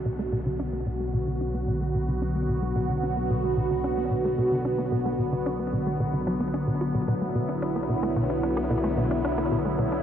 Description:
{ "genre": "ambient, sequencer-driven space music", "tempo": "111 BPM", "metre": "4/4", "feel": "straight", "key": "B minor", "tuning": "A4 = 440 Hz", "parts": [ { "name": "phased analog pad", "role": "sustained chords", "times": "0.0-10.0 s", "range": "D3 to F#4", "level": "-26 LUFS", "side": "equal", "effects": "phaser, chorus" }, { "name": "tight sequencer bass", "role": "riff", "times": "0.0-10.0 s", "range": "B2 to F#4", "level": "-29 LUFS", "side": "equal", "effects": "analog chorus, ping-pong delay" }, { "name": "analog drone", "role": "bass", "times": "0.0-10.0 s", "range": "B1", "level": "-33 LUFS", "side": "equal", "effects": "chorus, tube saturation" } ], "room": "moderate huge ambient reverb, RT60 8.8 s", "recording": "worn, warbling old tape, cassette tape, warbly pitch drift", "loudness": "-24 LUFS", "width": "side -9 dB against mid", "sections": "0.0-10.0 A section", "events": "filter sweep on analog synth bass 0.0-10.0", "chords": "0.0 Bm" }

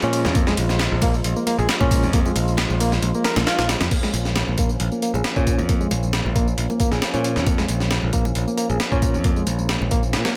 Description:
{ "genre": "breakbeat, breaks", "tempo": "135 BPM", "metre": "4/4", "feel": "straight", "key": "unclear", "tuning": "A4 = 440 Hz", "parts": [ { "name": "tonewheel organ", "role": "sustained chords", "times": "0.0-10.4 s", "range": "F3 to F4", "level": "-32 LUFS", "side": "equal", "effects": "slow rotary speaker, sidechain pumping" }, { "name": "overdriven reed electric piano", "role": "riff", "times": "0.0-10.3 s", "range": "Ab3 to Bb4", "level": "-28 LUFS", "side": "equal", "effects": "fast tremolo, low-pass filter, tape echo" }, { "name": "modern bright picked electric bass", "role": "bass", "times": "0.0-10.2 s", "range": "Bb1 to Bb2", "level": "-25 LUFS", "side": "equal", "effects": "tube saturation" }, { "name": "breakbeat sampler-style drum kit", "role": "drums", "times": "0.0-10.4 s", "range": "crash cymbal, hi-hat, kick drum, snare drum", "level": "-24 LUFS", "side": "equal", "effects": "none" }, { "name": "house drum kit", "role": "drums", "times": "0.0-10.3 s", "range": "handclaps, ride cymbal, tambourine", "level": "-35 LUFS", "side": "equal", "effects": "none" }, { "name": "congas", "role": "percussion", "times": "0.3-10.3 s", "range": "none", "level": "-35 LUFS", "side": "equal", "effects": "none" } ], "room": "digital ambience", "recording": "none", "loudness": "-21 LUFS", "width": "mono", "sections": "0.0-3.9 A section; 3.9-10.4 B section", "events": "drop 0.0-3.9", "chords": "0.0 Bbm" }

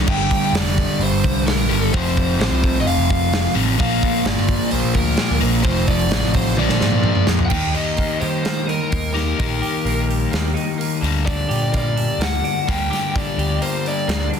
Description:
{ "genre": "quiet-loud alternative rock", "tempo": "128 BPM", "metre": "4/4", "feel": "straight", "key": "unclear", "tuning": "A4 = 440 Hz", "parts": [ { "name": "crunchy overdriven guitar", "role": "riff", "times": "0.0-14.4 s", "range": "F2 to Eb4", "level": "-24 LUFS", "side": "left 13 dB", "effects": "none" }, { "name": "fuzz guitar", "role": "riff", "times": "0.0-7.5 s", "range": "F2 to Bb3", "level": "-25 LUFS", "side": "right 14 dB", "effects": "distortion" }, { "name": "fuzz guitar", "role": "riff", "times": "0.0-7.5 s", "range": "F2 to Bb3", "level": "-25 LUFS", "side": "equal", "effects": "distortion" }, { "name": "biting lead guitar", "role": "melody", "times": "0.1-14.3 s", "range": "Bb4 to G5", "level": "-24 LUFS", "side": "equal", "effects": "overdrive, tape echo" }, { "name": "overdriven picked electric bass", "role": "bass", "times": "0.1-14.3 s", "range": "F1 to Eb3", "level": "-22 LUFS", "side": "equal", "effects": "none" }, { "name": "big rock drum kit", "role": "drums", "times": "0.1-14.4 s", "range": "crash cymbal, hi-hat, kick drum, snare drum, toms", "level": "-23 LUFS", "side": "right 1 dB", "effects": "none" }, { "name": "twelve-string electric guitar", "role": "arpeggios", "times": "7.5-14.4 s", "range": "D3 to G4", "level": "-28 LUFS", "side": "right 5 dB", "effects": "tape echo" } ], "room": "little or no reverb", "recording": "dense, heavily limited modern master", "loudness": "-16 LUFS", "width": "side -7 dB against mid", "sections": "0.0-7.5 A section; 7.5-14.4 B section", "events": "drum fill 6.6-7.5; half time 7.5-14.4", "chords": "0.1 Gm; 1.9 F5; 3.8 Bb; 5.7 F5; 6.6 Bb7; 7.5 Eb; 11.0 Gm/D" }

